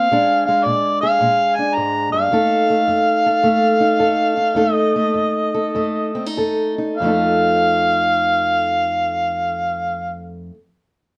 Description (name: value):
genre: acoustic country blues, solo or duo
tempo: 95-108 BPM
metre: 4/4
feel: swing 67% on 8ths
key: F mixolydian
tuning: A4 = 440 Hz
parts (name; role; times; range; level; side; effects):
- overdriven harmonica; melody; 0.0-10.3 s; D5 to Bb5; -19 LUFS; equal; none
- fingerpicked steel-string acoustic guitar; accompaniment; 0.0-10.6 s; F2 to A4; -22 LUFS; equal; none
room: moderate studio reverb, RT60 0.5 s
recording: dark, warm production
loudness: -18 LUFS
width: mono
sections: 0.0-7.0 A section; 7.0-9.5 B section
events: slowing down 2.3-7.0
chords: 0.1 Bb7; 2.3 F7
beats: | 0.11 0.67 1.22 1.77 | 2.33 2.88 3.44 4.00 | 4.58 5.16 5.75 6.36 | 6.98 7.61 8.24 8.88